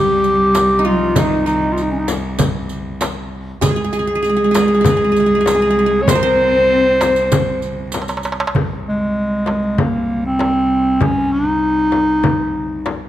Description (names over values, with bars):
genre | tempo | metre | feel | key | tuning
Turkish makam ensemble | 98 BPM | 4/4 | straight | C minor | A4 = 438 Hz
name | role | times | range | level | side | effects
mellow clarinet | melody | 0.0-13.0 s | Ab3 to Db5 | -15 LUFS | equal | none
dark studio cello section | second line | 0.0-7.9 s | Eb3 to C4 | -20 LUFS | right 2 dB | none
qanun | second line | 0.0-7.9 s | Eb4 to C5 | -24 LUFS | right 4 dB | none
rich cello | drone | 0.0-13.1 s | C2 | -25 LUFS | equal | none
darbuka | percussion | 0.2-13.0 s | none | -22 LUFS | right 3 dB | none
riq | percussion | 0.2-8.3 s | none | -29 LUFS | right 4 dB | none
frame drum | percussion | 0.5-13.0 s | none | -23 LUFS | left 6 dB | none
room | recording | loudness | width
moderate scoring stage reverb, RT60 1.9 s | close, detailed microphones | -14 LUFS | side -12 dB against mid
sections
0.0-8.5 A section; 8.5-13.1 B section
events
drum fill 7.9-8.5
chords
none